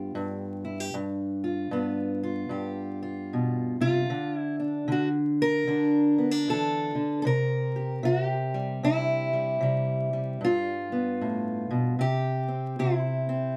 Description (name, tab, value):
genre	acoustic country blues, solo or duo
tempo	76 BPM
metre	4/4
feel	swing 63% on 8ths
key	G mixolydian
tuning	A4 = 440 Hz
part	fingerpicked steel-string acoustic guitar	solo	0.0-13.6 s	G2 to Bb4	-28 LUFS	equal	none
room	little or no reverb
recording	close, detailed microphones, vinyl crackle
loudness	-28 LUFS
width	mono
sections	0.0-13.6 A section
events	none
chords	0.0 G7; 4.1 D5; 7.3 C7; 10.4 G7; 12.0 N.C.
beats	0.14 | 0.94 1.73 2.52 3.31 | 4.10 4.89 5.69 6.48 | 7.27 8.06 8.85 9.64 | 10.43 11.21 12.00 12.79